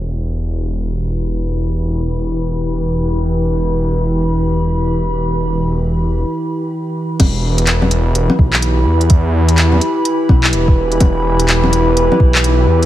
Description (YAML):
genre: future garage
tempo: 126 BPM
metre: 4/4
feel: swing 62% on 16ths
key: E minor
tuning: A4 = 436 Hz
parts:
  - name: warbly tape-like pad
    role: sustained chords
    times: 0.2-12.9 s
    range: E3 to B5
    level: -18 LUFS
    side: equal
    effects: chorus, built-in reverb, sidechain pumping
  - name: swelling detuned saw bass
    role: bass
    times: 0.0-12.9 s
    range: E1 to E2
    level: -16 LUFS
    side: equal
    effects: tube saturation, sidechain pumping
  - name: electronic kick drum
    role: drums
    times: 7.2-12.3 s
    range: none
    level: -11 LUFS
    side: equal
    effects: none
  - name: organic electronic drum kit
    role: drums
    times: 7.2-12.9 s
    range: bongos, crash cymbal, handclaps, hi-hat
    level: -17 LUFS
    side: left 1 dB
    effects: none
room: light reverb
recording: low-pass filter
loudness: -13 LUFS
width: side -13 dB against mid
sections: 0.0-7.2 A section; 7.2-12.9 B section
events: filter sweep on ambient pad 0.0-7.2; filter sweep 0.0-7.2; break 6.2-7.2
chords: 0.0 Em